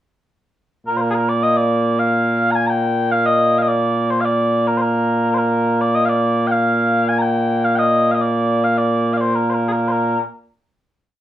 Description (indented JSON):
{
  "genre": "scottish traditional, Scottish pipe music",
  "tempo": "106 BPM",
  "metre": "4/4",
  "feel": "straight",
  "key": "Bb major",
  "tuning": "A4 = 440 Hz",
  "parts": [
    { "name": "mellow small bagpipes", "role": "solo", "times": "0.9-10.2 s", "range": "Bb2 to Bb5", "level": "-15 LUFS", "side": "equal", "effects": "none" }
  ],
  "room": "wet studio ambience, RT60 0.5 s",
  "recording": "band playing live in one room",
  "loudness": "-15 LUFS",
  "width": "side -12 dB against mid",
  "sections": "0.9-9.9 A section; 9.9-11.2 final note",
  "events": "none",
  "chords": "none",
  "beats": "| 0.86 1.43 1.99 2.56 | 3.12 3.69 4.26 4.82 | 5.39 5.96 6.52 7.09 | 7.65 8.22 8.79 9.35 | 9.92"
}